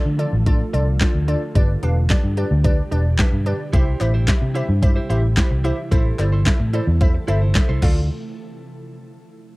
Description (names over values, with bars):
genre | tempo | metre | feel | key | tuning
dance-pop | 110 BPM | 4/4 | straight | D dorian | A4 = 442 Hz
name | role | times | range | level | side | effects
glassy wavetable pluck | accompaniment | 0.0-8.1 s | D4 to F5 | -26 LUFS | equal | chorus, sidechain pumping, cassette tape
ethereal airy pad | sustained chords | 0.0-8.1 s | B2 to A4 | -32 LUFS | right 1 dB | ensemble chorus, built-in reverb, sidechain pumping, cassette tape
vintage muted fingered electric bass | bass | 0.1-8.1 s | E1 to D3 | -19 LUFS | equal | sidechain pumping
pop drum kit | drums | 0.2-8.0 s | crash cymbal, handclaps, hi-hat, kick drum, snare drum | -17 LUFS | equal | cassette tape
direct-recorded clean electric guitar | riff | 3.7-8.0 s | E4 to D5 | -30 LUFS | right 3 dB | wide subtle chorus, cassette tape
group handclap | percussion | 4.0-8.1 s | none | -36 LUFS | left 2 dB | none
room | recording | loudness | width
little or no reverb | home recording on cassette | -16 LUFS | side -22 dB against mid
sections
0.0-8.1 A section; 8.1-9.6 B section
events
none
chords
0.0 Dm; 1.6 G; 3.7 C; 5.9 Am; 7.8 Dm; 8.1 N.C.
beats
0.46 1.01 | 1.55 2.10 2.65 3.19 | 3.74 4.28 4.83 5.37 | 5.92 6.46 7.01 7.55